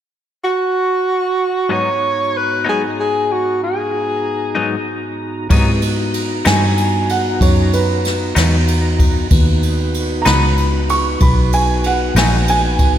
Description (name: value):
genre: slow blues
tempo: 63 BPM (dotted quarters)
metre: 12/8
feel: straight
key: G# minor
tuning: A4 = 440 Hz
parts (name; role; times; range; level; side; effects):
- warm tenor saxophone; melody; 0.4-4.8 s; F#4 to C#5; -17 LUFS; equal; slapback echo
- semi-hollow electric guitar; accompaniment; 1.7-12.4 s; G#2 to D#4; -23 LUFS; left 4 dB; harmonic tremolo, slapback echo
- mellow tonewheel organ; sustained chords; 1.7-13.0 s; G#2 to A#5; -23 LUFS; equal; slow rotary speaker, chorus vibrato
- vintage muted fingered electric bass; bass; 5.5-13.0 s; A#1 to G#2; -16 LUFS; equal; none
- jazz brush drum kit; drums; 5.5-12.9 s; kick drum, ride cymbal, snare drum; -17 LUFS; equal; none
- warm upright piano; second line; 6.5-13.0 s; B4 to C#6; -19 LUFS; right 3 dB; none
room: moderate lush hall reverb, RT60 2.6 s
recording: big arena sound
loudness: -13 LUFS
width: side -10 dB against mid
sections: 0.0-1.7 A section; 1.7-5.5 B section; 5.5-13.0 C section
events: upright piano solo 5.5-13.0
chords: 0.0 N.C.; 1.7 G#m7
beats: 0.73 | 1.69 2.65 3.60 4.55 | 5.51 6.46 7.41 8.36 | 9.31 10.27 11.22 12.17